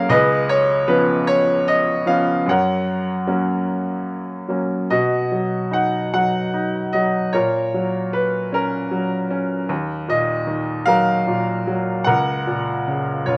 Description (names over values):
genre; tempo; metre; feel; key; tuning
classical, lyrical solo piano; 50 BPM (dotted quarters); 6/8; rubato; F# major; A4 = 441 Hz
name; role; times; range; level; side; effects
bright baby grand piano; solo; 0.0-13.4 s; C#2 to F#5; -20 LUFS; equal; none
room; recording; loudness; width
light reverb; worn, warbling old tape, cassette tape, warbly pitch drift; -20 LUFS; mono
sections
0.0-4.9 A section; 4.9-13.4 B section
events
none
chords
0.1 C#7; 2.5 F#; 4.9 B; 7.3 F#/A#; 9.7 D#m; 12.1 F#/C#